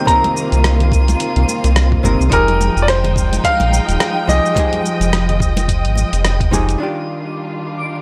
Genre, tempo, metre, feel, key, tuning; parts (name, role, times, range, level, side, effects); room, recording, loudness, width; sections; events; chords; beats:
sunset chillout; 107 BPM; 4/4; swing 57% on 16ths; A4 = 440 Hz
bright baby grand piano; melody; 0.0-6.5 s; Bb4 to Bb5; -21 LUFS; equal; tape echo
archtop guitar, miked and amplified; accompaniment; 0.0-8.0 s; C3 to Bb4; -26 LUFS; equal; tape echo
muted studio string section; sustained chords; 0.0-8.0 s; Eb3 to G5; -24 LUFS; equal
twinkling granular texture; texture; 0.0-8.0 s; D6 to Eb7; -35 LUFS; equal; built-in reverb
dusty soul sampler-style drum kit; drums; 0.1-6.8 s; hi-hat, rim click, shaker; -24 LUFS; equal; low-pass filter on hats, studio reverb, low-pass filter on perc, low-pass filter on snare
electronic kick drum; drums; 0.1-6.7 s; -22 LUFS; equal; studio reverb
congas; percussion; 0.1-6.7 s; -29 LUFS; equal
round analog bass; bass; 0.5-6.8 s; Eb1 to C2; -17 LUFS; equal
digital ambience; dry, gritty hardware recording; -15 LUFS; mono
0.0-6.8 A section; 6.8-8.0 B section
band accent 6.2
0.0 Cm7; 2.3 Fm9; 6.8 Ebmaj9
| 0.08 0.64 1.20 1.76 | 2.32 2.88 3.44 4.00 | 4.57 5.13 5.69 6.25 | 6.81 7.37 7.93